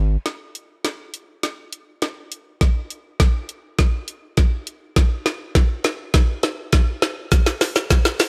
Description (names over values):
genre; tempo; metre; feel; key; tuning
pop; 102 BPM; 4/4; straight; none; none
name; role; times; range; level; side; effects
smooth R&B drum kit; drums; 0.3-8.3 s; hi-hat, kick drum, shaker, snare drum; -20 LUFS; equal; none
room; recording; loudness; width
little or no reverb; none; -21 LUFS; mono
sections
0.3-8.3 A section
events
build-up 0.3-8.3; drum fill 0.3-8.3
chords
none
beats
| 0.26 0.85 1.43 2.02 | 2.61 3.20 3.79 4.38 | 4.96 5.55 6.14 6.73 | 7.32 7.91